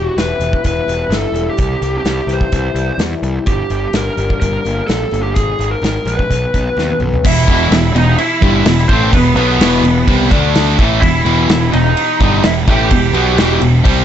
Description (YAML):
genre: quiet-loud alternative rock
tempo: 127 BPM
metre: 4/4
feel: straight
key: E minor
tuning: A4 = 439 Hz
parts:
  - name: lead guitar through a small cranked amp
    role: melody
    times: 0.0-13.6 s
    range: B3 to G5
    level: -18 LUFS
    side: right 1 dB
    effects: overdrive
  - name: picked steel-string acoustic guitar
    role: arpeggios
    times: 0.0-7.2 s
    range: E2 to G#4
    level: -23 LUFS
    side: left 7 dB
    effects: analog delay
  - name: fuzz picked electric bass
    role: bass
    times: 0.0-14.0 s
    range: E1 to E2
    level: -18 LUFS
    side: equal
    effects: overdrive
  - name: loose indie drum kit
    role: drums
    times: 0.2-14.0 s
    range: crash cymbal, hi-hat, kick drum, snare drum, toms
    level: -16 LUFS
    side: equal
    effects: none
  - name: tonewheel organ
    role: sustained chords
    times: 7.2-14.0 s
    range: D3 to B5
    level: -28 LUFS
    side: equal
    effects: none
  - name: biting overdriven guitar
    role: riff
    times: 7.2-14.0 s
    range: E2 to D4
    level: -17 LUFS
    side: left 9 dB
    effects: none
  - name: distorted electric guitar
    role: riff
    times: 7.2-14.0 s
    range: E2 to D4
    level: -17 LUFS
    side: right 11 dB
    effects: overdrive
room: little or no reverb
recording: nothing above 7.9 kHz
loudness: -11 LUFS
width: side -10 dB against mid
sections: 0.0-7.2 A section; 7.2-14.0 B section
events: drum fill 6.8-7.2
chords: 0.0 Em; 1.6 C; 3.5 Gm; 5.4 G#5; 6.3 B; 7.2 Em; 10.3 D5; 10.8 Em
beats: 0.17 0.64 1.12 | 1.59 2.06 2.53 3.00 | 3.47 3.95 4.42 4.89 | 5.36 5.83 6.30 6.78 | 7.25 7.72 8.19 8.66 | 9.13 9.60 10.07 10.54 | 11.02 11.49 11.96 12.43 | 12.90 13.38 13.85